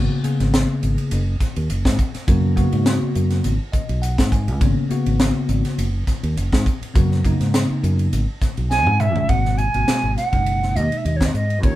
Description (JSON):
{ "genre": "electric jazz fusion", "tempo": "103 BPM", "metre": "4/4", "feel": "swing 53% on 16ths", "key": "G# minor", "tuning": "A4 = 440 Hz", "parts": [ { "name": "bell-like tine electric piano", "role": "accompaniment", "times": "0.0-11.8 s", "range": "B2 to G#5", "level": "-23 LUFS", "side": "left 1 dB", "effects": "phaser" }, { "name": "fingered electric bass", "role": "bass", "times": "0.0-11.8 s", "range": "F#1 to G#2", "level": "-20 LUFS", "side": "equal", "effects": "none" }, { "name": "crisp fusion drum kit", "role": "drums", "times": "0.2-11.8 s", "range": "hi-hat, kick drum, ride cymbal, snare drum, toms", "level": "-21 LUFS", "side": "equal", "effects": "none" }, { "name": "silver concert flute", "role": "melody", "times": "8.7-11.8 s", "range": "C#5 to G#5", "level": "-21 LUFS", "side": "right 3 dB", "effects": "none" } ], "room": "moderate studio ambience, RT60 0.5 s", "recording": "band playing live in one room", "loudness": "-17 LUFS", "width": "side -15 dB against mid", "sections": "0.0-9.3 A section; 9.3-11.8 B section", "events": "tine electric piano fill 3.5-4.6, 8.4-9.3; drum fill 8.7-9.3", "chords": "0.0 G#m11; 9.3 G#m9" }